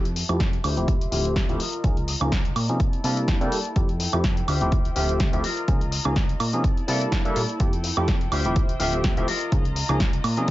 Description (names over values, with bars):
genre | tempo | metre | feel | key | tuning
filtered disco house | 125 BPM | 4/4 | swing 55% on 16ths | unclear | A4 = 435 Hz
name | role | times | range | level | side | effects
barky tine electric piano | accompaniment | 0.0-10.5 s | F3 to A5 | -28 LUFS | equal | phaser, sidechain pumping, low-pass filter
warm studio string section | sustained chords | 0.0-10.5 s | F3 to C6 | -35 LUFS | equal | sidechain pumping, low-pass filter
plucky analog bass | bass | 0.0-10.5 s | D1 to C3 | -27 LUFS | equal | sidechain pumping, low-pass filter
punchy analog drum machine | drums | 0.1-10.5 s | hi-hat, snare drum, woodblock | -29 LUFS | right 1 dB | sidechain pumping on hats, sidechain pumping on perc
electric guitar with an envelope filter | riff | 0.2-10.0 s | E4 to G5 | -32 LUFS | left 3 dB | vintage 12-bit sampler grit, sidechain pumping, low-pass filter
electronic kick drum | drums | 0.4-10.5 s | none | -23 LUFS | equal | none
room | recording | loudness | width
light reverb, digital ambience | nothing above 7.6 kHz | -21 LUFS | side -16 dB against mid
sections
0.0-10.5 A section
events
filter sweep 0.0-10.5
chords
0.0 Fmaj9; 0.6 Dm11; 1.6 Db69; 2.8 C13; 3.8 Fmaj9; 4.5 Dm11; 5.4 Db69; 6.6 C13; 7.6 Fmaj9; 8.3 Dm11; 9.3 Db69